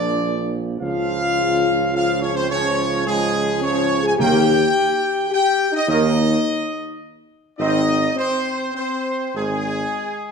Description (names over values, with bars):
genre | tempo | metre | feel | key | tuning
classical | 105 BPM | 3/4 | straight | Eb major | A4 = 440 Hz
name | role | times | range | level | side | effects
bright trumpet section | melody | 0.0-10.3 s | Ab4 to Ab5 | -21 LUFS | equal | none
warm French horn section | sustained chords | 0.0-10.3 s | Ab3 to Ab4 | -23 LUFS | left 6 dB | none
warm trombone section | sustained chords | 0.0-9.6 s | Ab2 to C4 | -28 LUFS | right 5 dB | none
warm tuba | bass | 0.0-9.9 s | Ab1 to Eb2 | -22 LUFS | right 4 dB | none
timpani | percussion | 4.2-5.0 s | Eb3 | -26 LUFS | right 1 dB | none
room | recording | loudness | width
wet recital hall reverb, RT60 1.3 s | dark, warm production | -17 LUFS | side -5 dB against mid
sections
0.0-10.3 A section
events
none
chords
0.0 Bb; 0.8 Db; 4.2 Eb; 7.6 Ab